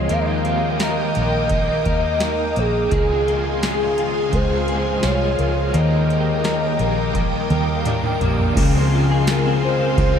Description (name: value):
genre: dream pop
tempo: 85 BPM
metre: 4/4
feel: straight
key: Eb major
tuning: A4 = 440 Hz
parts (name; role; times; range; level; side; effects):
- hollow clarinet-like synth lead; melody; 0.0-10.2 s; Ab4 to F5; -23 LUFS; equal; chorus, ping-pong delay
- crunchy overdriven guitar; accompaniment; 0.0-10.2 s; Db3 to G4; -26 LUFS; right 3 dB; tremolo, ensemble chorus
- string machine, violins; sustained chords; 0.0-10.2 s; Ab4 to Eb6; -26 LUFS; left 1 dB; ensemble chorus
- clean electric guitar; arpeggios; 0.0-10.2 s; Db3 to Bb4; -23 LUFS; left 3 dB; ensemble chorus, ping-pong delay
- vintage muted fingered electric bass; bass; 0.0-10.2 s; Bb1 to Eb2; -24 LUFS; equal; none
- booming analog drum machine; drums; 0.1-10.2 s; crash cymbal, hi-hat, kick drum, ride cymbal, snare drum, tambourine, toms; -24 LUFS; equal; none
- shimmering bell with halo; texture; 5.4-10.2 s; Bb4 to F5; -32 LUFS; left 2 dB; ensemble chorus, ping-pong delay
room: wet huge ambient reverb, RT60 7.4 s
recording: dreamy mix soaked in reverb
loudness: -17 LUFS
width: side -8 dB against mid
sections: 0.0-8.6 A section; 8.6-10.2 B section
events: drum fill 7.2-8.6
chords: 0.1 Ebmaj7; 2.9 Dbmaj7; 5.7 Ebmaj7; 8.6 Dbmaj7